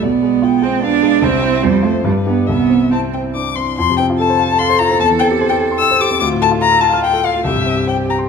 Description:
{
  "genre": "quick classical-period movement for piano trio",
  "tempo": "137-150 BPM",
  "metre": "3/4",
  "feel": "rubato",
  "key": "C major, F major from 3.8 s",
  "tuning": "A4 = 440 Hz",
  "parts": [
    { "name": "dark violin", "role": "melody", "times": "0.0-8.2 s", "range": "B4 to E6", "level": "-17 LUFS", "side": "left 8 dB", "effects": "none" },
    { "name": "rich cello", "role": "second line", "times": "0.0-8.3 s", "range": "G3 to A4", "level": "-16 LUFS", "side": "right 7 dB", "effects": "none" },
    { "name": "warm grand piano", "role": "accompaniment", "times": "0.0-8.3 s", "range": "B1 to F6", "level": "-18 LUFS", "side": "left 2 dB", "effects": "none" }
  ],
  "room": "moderate recital hall reverb, RT60 1.4 s",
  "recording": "close, detailed microphones",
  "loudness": "-12 LUFS",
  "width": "side -6 dB against mid",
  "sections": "0.0-3.8 A section; 3.8-8.3 B section",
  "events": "none",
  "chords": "0.0 Bdim7; 1.2 C; 1.6 F; 2.1 G; 2.5 C; 3.8 F; 5.0 C/E; 6.2 Dm; 7.5 C"
}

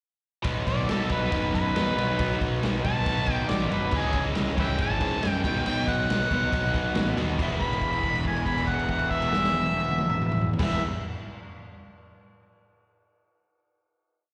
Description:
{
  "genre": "garage rock duo or trio",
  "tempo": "138 BPM",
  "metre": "4/4",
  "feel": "straight",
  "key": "E major",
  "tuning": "A4 = 440 Hz",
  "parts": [
    { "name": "overdriven electric guitar", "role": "riff", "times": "0.4-10.8 s", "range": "B2 to E4", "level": "-31 LUFS", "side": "equal", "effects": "slapback echo" },
    { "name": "fuzz picked electric bass", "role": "bass", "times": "0.4-10.8 s", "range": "E1 to G#2", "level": "-33 LUFS", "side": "equal", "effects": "overdrive" },
    { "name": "raw garage drum kit", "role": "drums", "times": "0.4-10.7 s", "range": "crash cymbal, kick drum, ride cymbal, snare drum, toms", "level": "-32 LUFS", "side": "equal", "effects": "none" },
    { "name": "overdriven harmonica", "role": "melody", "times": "0.7-10.8 s", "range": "G#4 to B5", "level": "-31 LUFS", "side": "equal", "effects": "none" }
  ],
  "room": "light reverb, small room ambience",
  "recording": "live gig heard through the venue's PA, recital hall reverb",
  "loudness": "-26 LUFS",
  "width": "mono",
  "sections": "0.5-7.4 pre-chorus; 7.4-10.9 final chord",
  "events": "held note 7.4-10.6",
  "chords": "0.5 B; 3.9 C#m; 5.4 B; 7.4 E"
}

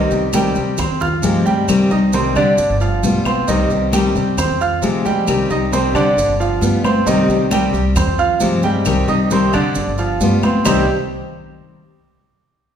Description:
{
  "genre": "latin, Cuban son and guajira",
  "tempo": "134 BPM",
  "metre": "4/4",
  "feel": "straight",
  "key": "C minor, C harmonic minor from 3.5 s",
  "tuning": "A4 = 438 Hz",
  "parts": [
    { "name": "picked steel-string acoustic guitar", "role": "accompaniment", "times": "0.0-10.8 s", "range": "C3 to G4", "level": "-18 LUFS", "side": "left 4 dB", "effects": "none" },
    { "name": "bright grand piano", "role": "arpeggios", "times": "0.0-10.9 s", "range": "C3 to F6", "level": "-18 LUFS", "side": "right 3 dB", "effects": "none" },
    { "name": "upright bass", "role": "bass", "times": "0.0-10.9 s", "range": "G1 to F3", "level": "-22 LUFS", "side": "right 1 dB", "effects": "none" },
    { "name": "congas", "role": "percussion", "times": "0.1-10.8 s", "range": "none", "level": "-22 LUFS", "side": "equal", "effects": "none" },
    { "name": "maracas", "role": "percussion", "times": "0.1-10.8 s", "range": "none", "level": "-30 LUFS", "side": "right 6 dB", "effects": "none" },
    { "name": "claves", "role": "percussion", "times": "0.3-10.8 s", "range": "none", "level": "-31 LUFS", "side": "left 6 dB", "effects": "none" }
  ],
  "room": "wet recital hall reverb, RT60 1.5 s",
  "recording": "recorded in a church or concert hall",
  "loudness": "-14 LUFS",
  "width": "side -8 dB against mid",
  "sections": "0.0-3.5 A section; 3.5-10.7 B section; 10.7-12.4 C section",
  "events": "none",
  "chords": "0.0 Cm; 0.8 Fmadd9; 1.7 Cm; 2.6 G7; 3.5 Cm; 4.4 Fmadd9; 5.3 Cm; 6.2 G7; 7.1 Cm; 8.0 Fmadd9; 8.9 Cm; 9.8 G7; 10.7 Cm"
}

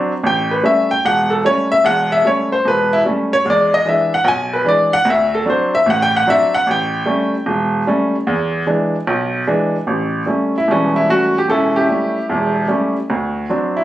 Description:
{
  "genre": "solo jazz",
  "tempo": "149 BPM",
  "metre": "4/4",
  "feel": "swing 66% on 8ths",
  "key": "A mixolydian",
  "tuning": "A4 = 440 Hz",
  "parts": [
    { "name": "clear upright piano", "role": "solo", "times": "0.0-13.8 s", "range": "E1 to G#5", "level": "-14 LUFS", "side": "equal", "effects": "none" }
  ],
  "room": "moderate studio reverb, RT60 0.7 s",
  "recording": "recorded on a phone in the room, studio ambience",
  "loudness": "-14 LUFS",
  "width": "side -14 dB against mid",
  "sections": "0.0-9.9 A section; 9.9-13.8 B section",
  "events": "upright piano solo 0.0-9.9",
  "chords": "0.2 A7; 3.4 E7; 5.0 D7; 6.7 A7; 8.3 E7; 9.9 A7; 13.1 D7"
}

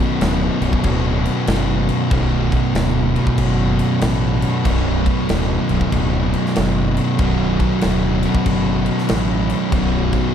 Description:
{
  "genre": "stoner and doom metal",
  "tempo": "95 BPM",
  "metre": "4/4",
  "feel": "swing 64% on 8ths",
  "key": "B minor",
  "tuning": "A4 = 439 Hz",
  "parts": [
    { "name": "bright tonewheel organ", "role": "sustained chords", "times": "0.0-10.3 s", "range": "D3 to B3", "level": "-32 LUFS", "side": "left 2 dB", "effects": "none" },
    { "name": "distorted electric guitar", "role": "riff", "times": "0.0-10.3 s", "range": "B1 to B2", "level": "-25 LUFS", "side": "left 1 dB", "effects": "overdrive" },
    { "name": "thick fuzz guitar", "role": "riff", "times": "0.0-10.3 s", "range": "B1 to B2", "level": "-22 LUFS", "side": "left 9 dB", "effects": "distortion" },
    { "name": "thick fuzz guitar", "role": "riff", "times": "0.0-10.3 s", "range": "B1 to B2", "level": "-21 LUFS", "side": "right 7 dB", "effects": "distortion" },
    { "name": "fuzz fingered electric bass", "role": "bass", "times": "0.2-10.1 s", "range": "B0 to A1", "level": "-22 LUFS", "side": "equal", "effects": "overdrive" },
    { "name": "big rock drum kit", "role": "drums", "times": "0.2-10.2 s", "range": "crash cymbal, kick drum, snare drum", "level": "-23 LUFS", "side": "equal", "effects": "none" }
  ],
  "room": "little or no reverb",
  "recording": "dark, warm production",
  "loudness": "-15 LUFS",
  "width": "side -8 dB against mid",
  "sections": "0.0-10.3 A section",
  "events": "none",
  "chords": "0.0 Bm"
}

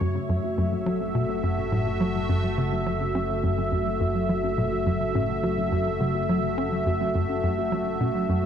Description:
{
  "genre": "ambient, sequencer-driven space music",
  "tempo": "105 BPM",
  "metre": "4/4",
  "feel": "straight",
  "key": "F# minor",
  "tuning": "A4 = 440 Hz",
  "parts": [
    { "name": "sweeping resonant pad", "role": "sustained chords", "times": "0.0-8.5 s", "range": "A3 to E5", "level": "-27 LUFS", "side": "equal", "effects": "chorus" },
    { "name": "warbly dusty pluck", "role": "arpeggios", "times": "0.0-8.5 s", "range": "F#3 to F#4", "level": "-31 LUFS", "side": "left 1 dB", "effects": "chorus, auto-pan, analog delay" },
    { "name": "tight sequencer bass", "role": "riff", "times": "0.0-8.5 s", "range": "F#2 to C#4", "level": "-27 LUFS", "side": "equal", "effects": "analog delay" },
    { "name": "analog drone", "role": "bass", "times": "1.0-8.5 s", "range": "F#1", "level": "-34 LUFS", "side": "equal", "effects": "chorus" }
  ],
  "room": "wet cathedral reverb, RT60 7.1 s",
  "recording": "in a vast, echoing space",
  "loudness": "-23 LUFS",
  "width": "side -8 dB against mid",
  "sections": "0.0-8.5 A section",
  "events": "none",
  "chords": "0.0 F#m"
}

